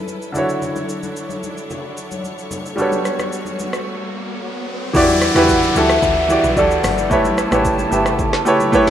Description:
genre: amapiano.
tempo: 111 BPM.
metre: 4/4.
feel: straight.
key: E dorian.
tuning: A4 = 440 Hz.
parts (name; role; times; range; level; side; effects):
warm grand piano; accompaniment; 0.0-8.9 s; D3 to E5; -17 LUFS; right 1 dB; none.
warm studio string section; sustained chords; 0.0-8.9 s; C#3 to F#5; -28 LUFS; left 1 dB; none.
deep house drum kit; drums; 0.1-8.9 s; hi-hat, kick drum, rim click, shaker, snare drum; -24 LUFS; equal; vintage 12-bit sampler grit.
congas; percussion; 0.1-8.9 s; none; -29 LUFS; left 1 dB; none.
riser and downlifter; sound effects; 3.2-8.9 s; none; -26 LUFS; left 1 dB; none.
deep log drum bass; bass; 4.9-8.9 s; G1 to E2; -25 LUFS; left 1 dB; none.
hollow clarinet-like synth lead; melody; 5.8-8.9 s; D5 to A5; -21 LUFS; right 1 dB; chorus, phaser, ping-pong delay.
room: light reverb.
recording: rough home demo mix.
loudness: -15 LUFS.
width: side -10 dB against mid.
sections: 0.0-4.9 A section; 4.9-8.9 B section.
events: riser 3.2-4.9; break 3.9-4.9; drop 4.9-8.9.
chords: 0.4 Dmaj9; 2.8 Gmaj9#11; 4.9 Em9; 7.1 A9.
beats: 0.08 | 0.62 1.16 1.70 2.24 | 2.78 3.32 3.87 4.41 | 4.95 5.49 6.03 6.57 | 7.11 7.65 8.19 8.73.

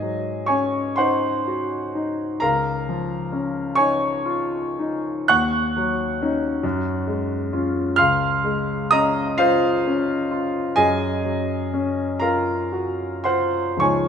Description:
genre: classical, impressionist solo piano.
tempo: 34-46 BPM (dotted quarters).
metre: 6/8.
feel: rubato.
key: Db major.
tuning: A4 = 440 Hz.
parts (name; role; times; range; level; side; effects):
clear concert grand piano; solo; 0.0-14.1 s; Db2 to Gb6; -19 LUFS; equal; none.
room: wet recital hall reverb, RT60 1.8 s.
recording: none.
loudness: -19 LUFS.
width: side -7 dB against mid.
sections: 0.0-14.1 A section.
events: none.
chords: 0.0 Ab7sus4; 2.4 Db69; 5.3 Ebm7; 6.6 Gbsus2; 8.0 Dbmaj7; 10.8 Gbmaj7.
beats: 0.97 | 2.41 3.78 | 5.30 6.64 | 7.99 9.38 | 10.77 12.20 | 13.80.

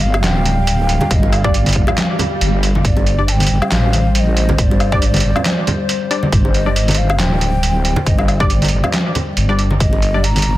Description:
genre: deep dubstep.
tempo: 138 BPM.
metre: 4/4.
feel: swing 55% on 16ths, half-time.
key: unclear.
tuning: A4 = 440 Hz.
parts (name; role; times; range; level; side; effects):
breathy mellow ney; melody; 0.0-10.6 s; D5 to Bb5; -24 LUFS; equal; dub echo.
dark analog pad; sustained chords; 0.0-10.6 s; G3 to F5; -23 LUFS; left 1 dB; chorus.
wobble bass; bass; 0.0-10.6 s; D1 to A1; -16 LUFS; equal; chorus.
trip hop sampler-style drum kit; drums; 0.1-10.5 s; handclaps, hi-hat, snare drum, woodblock; -20 LUFS; equal; overdrive.
bongos and congas; percussion; 0.1-10.4 s; none; -22 LUFS; right 1 dB; none.
electronic kick drum; drums; 1.1-9.9 s; none; -16 LUFS; equal; none.
filtered dub chord stab; stabs; 1.4-10.2 s; G3 to D5; -26 LUFS; left 2 dB; chorus, cassette tape, dub echo.
swell; sound effects; 2.1-2.8 s; none; -28 LUFS; equal; none.
room: little or no reverb.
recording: dense, heavily limited modern master, vinyl crackle.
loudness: -13 LUFS.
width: side -16 dB against mid.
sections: 0.0-10.6 A section.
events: swell 2.1-2.8.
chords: 0.0 G5.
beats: 0.24 0.67 | 1.11 1.54 1.98 2.41 | 2.85 3.28 3.72 4.15 | 4.59 5.02 5.46 5.89 | 6.33 6.76 7.20 7.63 | 8.06 8.50 8.93 9.37 | 9.80 10.24.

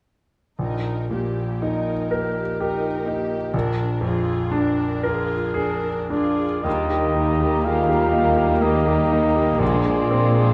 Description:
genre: classical, romantic movement for piano and orchestra.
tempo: 60 BPM.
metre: 3/4.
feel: uneven beats, rubato.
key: Eb major.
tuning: A4 = 440 Hz.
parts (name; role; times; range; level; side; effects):
bright grand piano; melody; 0.6-10.5 s; Bb1 to Bb4; -25 LUFS; equal; none.
rich studio viola section; accompaniment; 0.6-10.5 s; Eb3 to Bb4; -33 LUFS; equal; none.
mellow cor anglais; second line; 6.1-10.5 s; D5 to F5; -27 LUFS; equal; none.
mellow French horn section; sustained chords; 6.1-10.5 s; D4 to F4; -29 LUFS; equal; none.
warm studio violin section; melody; 6.6-10.5 s; Bb3; -33 LUFS; equal; none.
warm studio violin section; second line; 6.6-10.5 s; G3 to Ab3; -34 LUFS; equal; none.
dark bassoon; accompaniment; 6.6-10.5 s; Bb3; -32 LUFS; equal; none.
dark studio double bass section; bass; 6.6-10.5 s; Bb1 to Eb2; -29 LUFS; equal; none.
bright large flute ensemble; second line; 6.7-10.5 s; Bb5 to C6; -33 LUFS; equal; none.
warm clarinet; second line; 6.7-10.5 s; G4 to Ab4; -35 LUFS; equal; none.
mellow tuba; bass; 6.7-10.5 s; Bb1 to Eb2; -30 LUFS; equal; none.
warm studio cello section; bass; 6.7-10.5 s; Eb2 to Bb2; -30 LUFS; equal; none.
timpani; percussion; 9.6-10.5 s; Bb2; -32 LUFS; equal; none.
room: moderate recital hall reverb, RT60 1.4 s.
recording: dark, warm production.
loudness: -21 LUFS.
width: mono.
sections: 0.6-6.7 A section; 6.7-10.5 B section.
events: none.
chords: 0.6 Eb/Bb; 3.5 Bb7; 6.7 Eb; 9.6 Bb9.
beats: | 0.59 1.62 2.60 | 3.54 4.53 5.56 | 6.66 7.66 8.63 | 9.61.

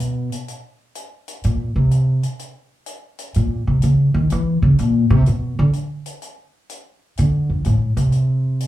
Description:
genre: jazz, small-group swing and bop.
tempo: 126 BPM.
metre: 4/4.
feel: swing 68% on 8ths.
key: unclear.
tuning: A4 = 440 Hz.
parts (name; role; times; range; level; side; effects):
upright bass; bass; 0.0-8.7 s; F2 to E3; -16 LUFS; equal; none.
hi-hat; drums; 0.0-8.7 s; none; -36 LUFS; left 2 dB; none.
room: little or no reverb.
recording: live gig heard through the venue's PA, club reverb.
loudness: -16 LUFS.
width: side -14 dB against mid.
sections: 0.0-8.7 A section.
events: upright bass solo 0.0-8.7.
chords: none.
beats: 0.00 0.48 0.96 | 1.44 1.92 2.40 2.88 | 3.35 3.83 4.31 4.79 | 5.26 5.74 6.22 6.70 | 7.17 7.65 8.13 8.61.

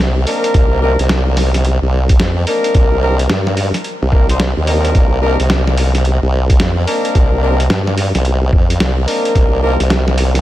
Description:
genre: glitch hop.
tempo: 109 BPM.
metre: 4/4.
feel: swing 63% on 16ths.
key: C minor.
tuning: A4 = 436 Hz.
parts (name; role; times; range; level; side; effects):
formant-sweep wobble bass; bass; 0.0-10.4 s; C2 to G2; -14 LUFS; equal; chorus, tube saturation.
mellow horn section; stabs; 0.3-9.8 s; Bb3 to C5; -19 LUFS; left 1 dB; sidechain pumping, ping-pong delay.
boom bap sampler-style drum kit; drums; 0.3-10.4 s; hi-hat, snare drum; -20 LUFS; equal; none.
electronic kick drum; drums; 0.5-9.5 s; none; -12 LUFS; equal; none.
room: light reverb.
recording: none.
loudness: -11 LUFS.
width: side -14 dB against mid.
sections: 0.0-10.4 A section.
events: none.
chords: 0.0 Cm9.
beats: | 0.54 1.09 1.64 2.19 | 2.75 3.30 3.85 4.40 | 4.95 5.50 6.05 6.60 | 7.15 7.70 8.25 8.80 | 9.35 9.90.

